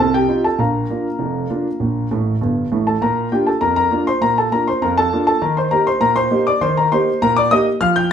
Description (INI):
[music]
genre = ragtime piano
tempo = 100 BPM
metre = 2/4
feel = straight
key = Bb major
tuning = A4 = 440 Hz
[part]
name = warm concert grand piano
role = solo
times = 0.0-8.1 s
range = F1 to G6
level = -15 LUFS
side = equal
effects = none
[sound]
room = wet studio reverb, RT60 0.6 s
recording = heard from further back in the room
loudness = -15 LUFS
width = side -8 dB against mid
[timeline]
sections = 0.0-3.0 A section; 3.0-8.1 A section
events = grand piano fill 2.1-3.0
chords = 0.0 F7; 0.6 Bb; 5.4 Eb